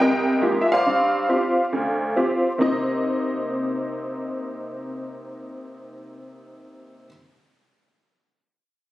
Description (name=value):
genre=solo jazz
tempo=138 BPM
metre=4/4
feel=swing 65% on 8ths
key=C minor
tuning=A4 = 440 Hz
part: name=honky-tonk upright piano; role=solo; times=0.0-7.1 s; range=C2 to G5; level=-21 LUFS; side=equal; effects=none
room=light reverb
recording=recorded on a phone in the room, club reverb, compression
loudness=-20 LUFS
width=side -15 dB against mid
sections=0.0-2.6 A section; 2.6-6.1 B section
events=none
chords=0.0 Fm11; 0.9 G7sus4; 2.6 Cm7